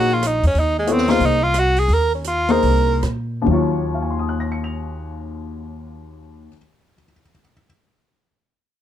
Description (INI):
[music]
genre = modal jazz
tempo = 131-188 BPM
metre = 4/4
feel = swing 64% on 8ths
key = Eb dorian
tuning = A4 = 440 Hz
[part]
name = edgy tenor saxophone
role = melody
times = 0.0-3.0 s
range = G#3 to Bb4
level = -18 LUFS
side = right 2 dB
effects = none
[part]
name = dark baby grand piano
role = accompaniment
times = 0.0-7.6 s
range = Eb2 to F7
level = -21 LUFS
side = left 4 dB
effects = none
[part]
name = upright bass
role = bass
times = 0.0-6.5 s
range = Bb1 to Bb2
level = -22 LUFS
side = equal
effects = none
[part]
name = open jazz drum kit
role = drums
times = 0.2-3.2 s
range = hi-hat, rim click, snare drum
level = -32 LUFS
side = right 5 dB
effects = none
[sound]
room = light reverb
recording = dark, warm production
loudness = -16 LUFS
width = side -11 dB against mid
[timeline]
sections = 0.0-3.5 A section; 3.5-7.1 B section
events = tenor saxophone solo 0.0-3.5; slowing down 0.5-3.5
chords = 0.0 Eb5; 0.5 Cm7b13; 3.5 Ebm9